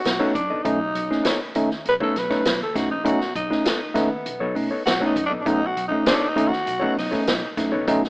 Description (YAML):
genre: funk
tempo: 100 BPM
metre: 4/4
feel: straight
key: B mixolydian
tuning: A4 = 440 Hz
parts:
  - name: growling tenor saxophone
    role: melody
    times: 0.0-7.5 s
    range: B3 to B4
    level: -24 LUFS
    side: equal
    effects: none
  - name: tine electric piano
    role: stabs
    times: 0.0-8.0 s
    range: B2 to D#4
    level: -23 LUFS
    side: equal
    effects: none
  - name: swinging big-band drum kit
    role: drums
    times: 0.1-8.1 s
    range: hi-hat, kick drum, snare drum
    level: -26 LUFS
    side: equal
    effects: none
  - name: hollow-body jazz guitar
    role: accompaniment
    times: 0.2-7.9 s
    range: B3 to D#5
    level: -26 LUFS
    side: left 2 dB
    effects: none
  - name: upright bass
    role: bass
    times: 0.4-8.1 s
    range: A#1 to B2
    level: -34 LUFS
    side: equal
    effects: none
room: light reverb, small room ambience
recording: rough home demo mix, AM radio sound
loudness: -20 LUFS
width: side -25 dB against mid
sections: 0.0-8.1 A section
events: tenor saxophone solo 0.0-8.1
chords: 0.0 B9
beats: 0.05 | 0.65 1.25 1.85 2.45 | 3.06 3.66 4.26 4.86 | 5.46 6.07 6.67 7.28 | 7.88